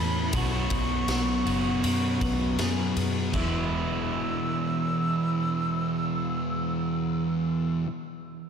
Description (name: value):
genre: rock, shoegaze and dream pop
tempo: 80 BPM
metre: 4/4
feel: straight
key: E major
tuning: A4 = 440 Hz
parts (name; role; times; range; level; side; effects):
- jazz flute; melody; 0.0-7.1 s; B5 to E6; -34 LUFS; equal; tape echo
- twelve-string electric guitar; arpeggios; 0.0-4.2 s; E4 to B4; -38 LUFS; left 1 dB; wide subtle chorus, tape echo
- fuzz guitar; riff; 0.0-7.9 s; E2 to B3; -31 LUFS; left 6 dB; distortion, ensemble chorus
- overdriven semi-hollow guitar; riff; 0.0-7.9 s; E2 to F#4; -29 LUFS; right 6 dB; reverse reverb
- vintage muted fingered electric bass; bass; 0.0-7.8 s; E1 to F#2; -31 LUFS; equal; none
- raw garage drum kit; drums; 0.3-3.5 s; china cymbal, kick drum, ride cymbal, snare drum; -32 LUFS; left 1 dB; none
room: wet plate reverb, RT60 2.8 s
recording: dreamy mix soaked in reverb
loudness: -24 LUFS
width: side -7 dB against mid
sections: 0.0-3.3 A section; 3.3-6.4 B section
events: none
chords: 0.3 Bsus2; 3.3 E